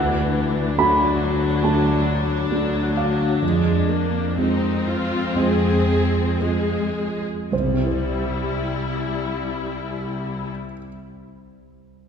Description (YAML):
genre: cinematic, emotional film score for orchestra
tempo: 53-70 BPM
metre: 4/4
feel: rubato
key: unclear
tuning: A4 = 440 Hz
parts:
  - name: warm concert grand piano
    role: accompaniment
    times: 0.0-12.1 s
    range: C2 to B5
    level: -22 LUFS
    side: right 3 dB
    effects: none
  - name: warm studio viola section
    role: accompaniment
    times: 0.0-10.5 s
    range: E3 to Ab4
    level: -24 LUFS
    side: left 4 dB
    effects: none
  - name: rich studio cello section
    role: bass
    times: 0.0-10.5 s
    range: C2 to F2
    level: -25 LUFS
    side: left 1 dB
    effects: none
room: wet concert hall reverb, RT60 2.5 s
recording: recorded in a church or concert hall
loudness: -19 LUFS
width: side -7 dB against mid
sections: 0.0-7.5 A section; 7.5-12.0 B section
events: slowing down 0.0-7.5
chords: 0.0 D; 3.4 Fm; 7.5 C